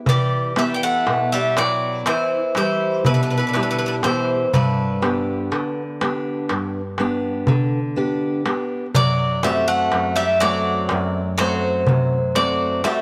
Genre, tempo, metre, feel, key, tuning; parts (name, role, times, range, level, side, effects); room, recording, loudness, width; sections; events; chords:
greek folk, Greek bouzouki band; 122 BPM (eighths); 9/8; straight; E minor; A4 = 437 Hz
Greek bouzouki; melody; 0.1-13.0 s; B4 to G5; -24 LUFS; equal
Greek bouzouki; second line; 0.1-13.0 s; D3 to B3; -29 LUFS; equal
fingerpicked steel-string acoustic guitar; accompaniment; 0.1-13.0 s; F#2 to G5; -25 LUFS; equal
darbuka; percussion; 0.1-13.0 s; -24 LUFS; equal
moderate plate reverb, RT60 2.5 s; -20 LUFS; mono
0.1-13.0 A section
speeding up 0.0-13.0
0.1 Em; 4.5 G; 9.0 F#dim